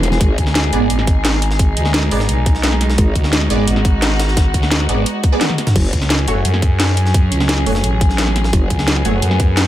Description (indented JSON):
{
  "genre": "dark technical drum and bass",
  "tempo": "173 BPM",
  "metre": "4/4",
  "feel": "straight",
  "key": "unclear",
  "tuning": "A4 = 440 Hz",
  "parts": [
    { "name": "dark studio string section", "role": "sustained chords", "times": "0.0-9.7 s", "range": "F#3 to G#4", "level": "-22 LUFS", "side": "left 1 dB", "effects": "sidechain pumping" },
    { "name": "growl bass", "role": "bass", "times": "0.0-0.4, 3.0-3.1, 5.8-5.9, 8.5-8.7 s", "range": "E1 to G#1", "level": "-16 LUFS", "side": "equal", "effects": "chorus, tube saturation, sidechain pumping" },
    { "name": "breakbeat sampler-style drum kit", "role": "drums", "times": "0.0-9.7 s", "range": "hi-hat, snare drum", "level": "-27 LUFS", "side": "equal", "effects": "high-pass filter on hats, high-pass filter on snare" },
    { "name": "drum and bass drum kit", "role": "drums", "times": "0.0-9.6 s", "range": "crash cymbal, hi-hat, snare drum, toms", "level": "-19 LUFS", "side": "equal", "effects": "none" },
    { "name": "electronic kick drum", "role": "drums", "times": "0.2-9.5 s", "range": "none", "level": "-15 LUFS", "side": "equal", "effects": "none" },
    { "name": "growling FM bass", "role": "bass", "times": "0.4-9.7 s", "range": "F#1 to F#2", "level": "-17 LUFS", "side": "equal", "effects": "none" },
    { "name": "orchestra-hit-like synth stab", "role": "stabs", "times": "0.7-9.2 s", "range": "A3 to D5", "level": "-23 LUFS", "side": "right 4 dB", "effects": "built-in reverb, phaser, tape echo" }
  ],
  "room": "little or no reverb",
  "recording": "none",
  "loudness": "-13 LUFS",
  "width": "side -13 dB against mid",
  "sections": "0.0-9.7 A section",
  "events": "drum fill 5.4-5.8",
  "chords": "0.2 G#dim; 5.8 F#m",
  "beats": "| 0.21 0.55 0.90 1.25 | 1.59 1.94 2.29 2.63 | 2.98 3.33 3.67 4.02 | 4.37 4.71 5.06 5.41 | 5.76 6.10 6.45 6.80 | 7.14 7.49 7.84 8.18 | 8.53 8.88 9.22 9.57"
}